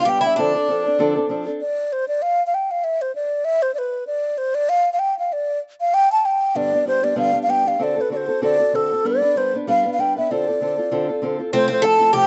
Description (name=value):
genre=celtic folk, Celtic reel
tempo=193 BPM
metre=4/4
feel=swing 56% on 8ths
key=D dorian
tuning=A4 = 440 Hz
part: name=mellow hollow wooden flute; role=melody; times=0.0-12.3 s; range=A4 to A5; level=-21 LUFS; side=equal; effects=slapback echo
part: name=Irish bouzouki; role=second line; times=0.0-1.2, 11.5-12.3 s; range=C4 to A4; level=-24 LUFS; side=equal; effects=slapback echo
part: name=fingerpicked acoustic archtop guitar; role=accompaniment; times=0.0-1.6, 6.5-12.3 s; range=F2 to B4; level=-25 LUFS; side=equal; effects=slapback echo
room=little or no reverb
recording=recorded outdoors, with no room sound, nothing above 8.0 kHz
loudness=-20 LUFS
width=mono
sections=0.0-1.6 A section; 1.6-11.5 A section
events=none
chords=0.4 Dm7; 1.6 N.C.; 5.3 G; 7.8 D7; 9.0 G; 10.3 Dm7; 11.5 F